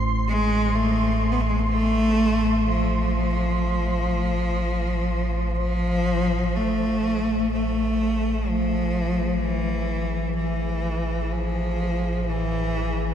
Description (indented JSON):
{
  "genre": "dark ambient drone",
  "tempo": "62 BPM",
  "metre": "4/4",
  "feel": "straight",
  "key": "A harmonic minor",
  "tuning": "A4 = 441 Hz",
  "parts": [
    { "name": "deep rumbling drone", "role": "drone", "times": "0.0-13.1 s", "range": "A1", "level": "-26 LUFS", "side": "equal", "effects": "built-in reverb" },
    { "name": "flickering grainy texture", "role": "texture", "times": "0.0-13.1 s", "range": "G#4 to C6", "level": "-33 LUFS", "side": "right 2 dB", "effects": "built-in reverb, shimmer reverb" },
    { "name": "clear cello", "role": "melody", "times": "0.3-13.1 s", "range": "E3 to B3", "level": "-23 LUFS", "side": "equal", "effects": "shimmer reverb, ping-pong delay" }
  ],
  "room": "wet huge ambient reverb, RT60 8.3 s",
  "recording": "none",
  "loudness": "-21 LUFS",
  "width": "side -9 dB against mid",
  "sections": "0.0-6.6 A section; 6.6-13.1 B section",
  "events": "fade-in on synth texture 6.6-13.1",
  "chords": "0.0 F/A"
}